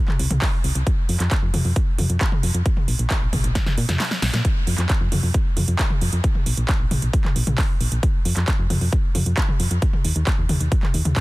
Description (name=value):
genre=uplifting trance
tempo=134 BPM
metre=4/4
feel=straight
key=unclear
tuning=A4 = 442 Hz
part: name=big-room dance drum kit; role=drums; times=0.1-11.2 s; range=handclaps, hi-hat, snare drum, toms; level=-25 LUFS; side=equal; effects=none
part: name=solid FM bass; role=bass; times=0.2-11.1 s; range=Bb1 to Bb2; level=-21 LUFS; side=equal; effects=sidechain pumping
part: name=electronic kick drum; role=drums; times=0.4-11.2 s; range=none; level=-20 LUFS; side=equal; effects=none
room=little or no reverb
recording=dense, heavily limited modern master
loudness=-18 LUFS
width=side -20 dB against mid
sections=0.0-11.2 A section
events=drum fill 3.6-4.4; kick drops out 4.0-4.4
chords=none